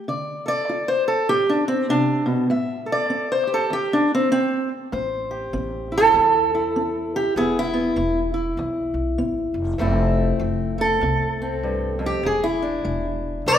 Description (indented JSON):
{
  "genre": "acoustic country blues, solo or duo",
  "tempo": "99 BPM",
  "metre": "4/4",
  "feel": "swing 60% on 8ths",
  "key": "A minor",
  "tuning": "A4 = 442 Hz",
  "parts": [
    { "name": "fingerpicked steel-string acoustic guitar", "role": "melody", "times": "0.0-13.6 s", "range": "E2 to E5", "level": "-20 LUFS", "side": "equal", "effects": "none" },
    { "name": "upright bass", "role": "bass", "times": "4.9-13.6 s", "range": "E1 to E2", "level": "-27 LUFS", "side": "equal", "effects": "none" }
  ],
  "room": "wet recital hall reverb, RT60 1.9 s",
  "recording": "minimal, uncompressed stereo recording",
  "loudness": "-19 LUFS",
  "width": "side -9 dB against mid",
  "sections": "0.0-13.6 A section",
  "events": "steel-string acoustic guitar solo 0.0-13.6",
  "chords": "0.1 Dm7; 2.5 Am7; 7.4 E; 9.8 Fmaj7; 12.2 E7"
}